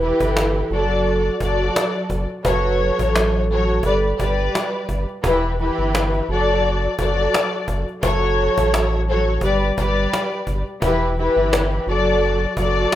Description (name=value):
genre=hip hop, boom-bap hip-hop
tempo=86 BPM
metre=4/4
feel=swing 56% on 16ths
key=unclear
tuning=A4 = 439 Hz
part: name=vibraphone with soft mallets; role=melody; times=0.0-4.7 s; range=A4 to D5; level=-24 LUFS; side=right 2 dB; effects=high-pass filter, low-pass filter, tape echo
part: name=dark symphonic string section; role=accompaniment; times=0.0-13.0 s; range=E3 to D5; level=-19 LUFS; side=left 1 dB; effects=cassette tape, high-pass filter, low-pass filter
part: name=sub bass with octave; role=bass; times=0.0-12.9 s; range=E1 to A1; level=-22 LUFS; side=equal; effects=none
part: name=cajon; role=drums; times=0.0-13.0 s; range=none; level=-25 LUFS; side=equal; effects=none
room=small room reverb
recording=rough home demo mix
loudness=-17 LUFS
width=side -12 dB against mid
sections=0.0-5.2 A section; 5.2-13.0 B section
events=none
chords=0.0 Em; 0.7 D/F#; 2.4 F#m; 3.8 G; 5.2 Em; 6.3 D/F#; 8.0 F#m; 9.4 G; 10.8 Em; 11.9 D/F#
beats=0.35 1.05 1.75 | 2.45 3.15 3.84 4.54 | 5.24 5.94 6.63 7.33 | 8.03 8.73 9.43 10.12 | 10.82 11.52 12.21 12.91